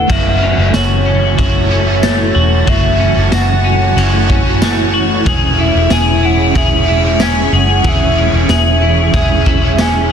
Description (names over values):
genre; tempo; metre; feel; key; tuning
dream pop; 93 BPM; 4/4; straight; unclear; A4 = 441 Hz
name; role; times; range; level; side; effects
hollow clarinet-like synth lead; melody; 0.0-10.1 s; C#5 to G#5; -19 LUFS; right 2 dB; chorus, ping-pong delay
soft string machine; sustained chords; 0.0-10.1 s; F#4 to C#6; -21 LUFS; equal; ensemble chorus
clean electric guitar; arpeggios; 0.0-10.1 s; F#2 to G#4; -16 LUFS; left 4 dB; analog chorus, ping-pong delay
vintage muted fingered electric bass; bass; 0.0-10.1 s; E1 to F#1; -15 LUFS; equal; none
overdriven semi-hollow guitar; accompaniment; 0.1-10.1 s; F#2 to E4; -18 LUFS; right 3 dB; harmonic tremolo, ensemble chorus
raw garage drum kit; drums; 0.1-9.9 s; crash cymbal, kick drum, ride cymbal, snare drum, tambourine; -17 LUFS; equal; none
room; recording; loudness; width
light reverb; dense, heavily limited modern master; -10 LUFS; side -7 dB against mid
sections
0.1-10.1 A section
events
none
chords
0.1 F#m7; 5.3 C#m/E